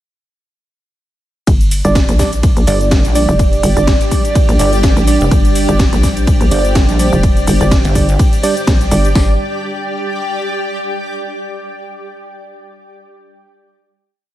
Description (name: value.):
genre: bass house.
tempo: 125 BPM.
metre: 4/4.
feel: swing 56% on 16ths.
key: G minor.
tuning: A4 = 440 Hz.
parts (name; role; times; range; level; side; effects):
dark analog pad; sustained chords; 2.4-9.4 s; G3 to D5; -21 LUFS; right 2 dB; chorus, phaser, sidechain pumping.
hollow knocking FM bass; bass; 1.5-9.4 s; F1 to Bb1; -14 LUFS; equal; tube saturation, sidechain pumping.
house drum kit; drums; 1.5-9.3 s; hi-hat, kick drum, snare drum; -12 LUFS; equal; studio reverb.
house drum kit; drums; 1.5-9.1 s; hi-hat, ride cymbal, shaker, snare drum; -21 LUFS; equal; studio reverb.
granular cloud pad; texture; 2.8-11.0 s; G4 to G5; -22 LUFS; left 1 dB; built-in reverb, analog chorus, sidechain pumping.
percussive organ stab; stabs; 1.8-9.3 s; G3 to D5; -20 LUFS; right 2 dB; chorus, sidechain pumping, diffuse ambient delay.
pulsing pluck wobble bass; bass; 2.7-8.2 s; F1 to Bb1; -14 LUFS; equal; chorus, tube saturation, sidechain pumping.
room: light reverb, digital ambience.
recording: none.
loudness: -10 LUFS.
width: side -14 dB against mid.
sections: 1.5-9.2 drop; 9.2-11.1 final chord.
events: drop 1.5-9.2.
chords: 1.5 G5.